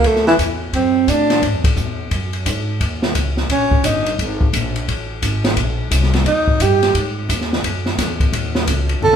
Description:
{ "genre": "jazz, small-group swing and bop", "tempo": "174 BPM", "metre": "4/4", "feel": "swing 64% on 8ths", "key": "unclear", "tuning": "A4 = 441 Hz", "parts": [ { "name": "breathy tenor saxophone", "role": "second line", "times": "0.0-1.4, 3.5-4.2, 6.3-7.0, 9.0-9.2 s", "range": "E3 to A4", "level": "-15 LUFS", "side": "right 2 dB", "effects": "none" }, { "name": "upright bass", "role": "bass", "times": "0.0-9.2 s", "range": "G1 to A2", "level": "-21 LUFS", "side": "equal", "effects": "none" }, { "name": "open jazz drum kit", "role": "drums", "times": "0.0-9.2 s", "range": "hi-hat, kick drum, ride cymbal, snare drum, toms", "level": "-19 LUFS", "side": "left 1 dB", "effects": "none" } ], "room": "moderate large studio reverb, RT60 1.0 s", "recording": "band playing live in one room", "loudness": "-15 LUFS", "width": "side -8 dB against mid", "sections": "0.0-9.2 A section", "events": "tenor saxophone solo 0.0-9.2", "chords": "0.0 D9; 1.4 C#m (rootless); 2.8 D#7; 4.2 G#sus2; 4.9 N.C.; 5.6 A#sus2; 6.3 D#; 7.0 G#7sus4" }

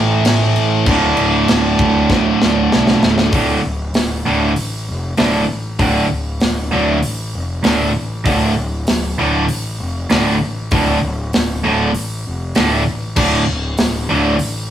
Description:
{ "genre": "hard rock", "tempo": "97 BPM", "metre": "4/4", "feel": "straight", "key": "D minor", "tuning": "A4 = 437 Hz", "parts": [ { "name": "cranked stack guitar", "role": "riff", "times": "0.0-14.3 s", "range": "D2 to A3", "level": "-16 LUFS", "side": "right 2 dB", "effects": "overdrive" }, { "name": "scooped high-gain guitar", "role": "riff", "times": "0.0-14.3 s", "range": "D2 to A3", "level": "-21 LUFS", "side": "left 5 dB", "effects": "distortion" }, { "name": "fuzz fingered electric bass", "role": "bass", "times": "0.0-14.7 s", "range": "D1 to D2", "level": "-22 LUFS", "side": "left 1 dB", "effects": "overdrive" }, { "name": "tight metal drum kit", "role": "drums", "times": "0.2-14.5 s", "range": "crash cymbal, hi-hat, kick drum, snare drum", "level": "-19 LUFS", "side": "equal", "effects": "none" } ], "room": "wet studio reverb, RT60 0.6 s", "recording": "rough rehearsal-room recording, warm saturation", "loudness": "-14 LUFS", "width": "side -11 dB against mid", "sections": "0.0-3.3 A section; 3.3-14.7 B section", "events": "drum fill 2.1-3.3", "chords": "0.0 A5; 0.9 D5" }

